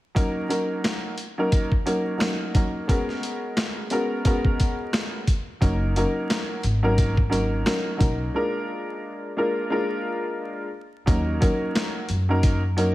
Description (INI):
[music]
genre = hip hop, boom-bap hip-hop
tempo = 88 BPM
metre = 4/4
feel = swing 56% on 16ths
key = Eb minor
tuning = A4 = 441 Hz
[part]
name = warm upright piano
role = accompaniment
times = 0.1-12.9 s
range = Gb3 to Bb4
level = -25 LUFS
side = equal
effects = cassette tape
[part]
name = boom bap sampler-style drum kit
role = drums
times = 0.2-12.9 s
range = hi-hat, kick drum, snare drum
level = -23 LUFS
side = equal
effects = none
[part]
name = upright bass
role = bass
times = 5.6-12.9 s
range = Gb1 to Gb2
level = -24 LUFS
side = equal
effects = none
[sound]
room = light reverb, studio ambience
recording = vinyl crackle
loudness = -22 LUFS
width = side -16 dB against mid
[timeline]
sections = 0.2-11.1 A section; 11.1-12.9 B section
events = break 8.3-11.1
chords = 0.2 Ebm7; 2.9 Abm11; 5.6 Ebm7/Gb; 8.3 Bb7; 11.1 Ebm7